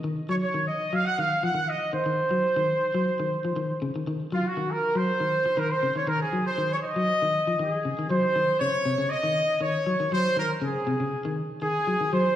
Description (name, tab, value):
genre	afrobeat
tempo	119 BPM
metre	4/4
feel	straight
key	unclear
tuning	A4 = 439 Hz
part	electric guitar at the edge of break-up	arpeggios	0.0-12.3 s	C3 to Gb3	-28 LUFS	left 1 dB	slapback echo
part	bright horn section	melody	0.3-12.4 s	F4 to Gb5	-25 LUFS	equal	slapback echo
room	light reverb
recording	live gig heard through the venue's PA, recital hall reverb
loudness	-23 LUFS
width	side -11 dB against mid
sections	0.0-8.1 A section; 8.1-12.4 B section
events	none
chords	0.0 Ebm; 2.1 Dbmaj7sus2 (rootless); 8.1 Cdim